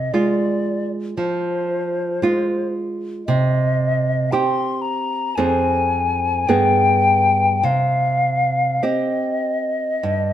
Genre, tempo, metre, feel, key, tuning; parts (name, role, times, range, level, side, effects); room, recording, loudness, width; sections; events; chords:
romantic duo for flute and classical guitar; 49-58 BPM; 4/4; rubato; C minor; A4 = 442 Hz
hollow concert flute; melody; 0.0-10.3 s; C5 to C6; -20 LUFS; left 3 dB
nylon-string guitar; accompaniment; 0.0-10.3 s; F2 to Ab4; -20 LUFS; right 3 dB
moderate stone room reverb, RT60 1.1 s; band playing live in one room; -17 LUFS; side -11 dB against mid
0.0-10.3 A section
0.0 Fm/C; 3.3 Cm; 5.4 Fm; 6.5 G; 7.6 Cm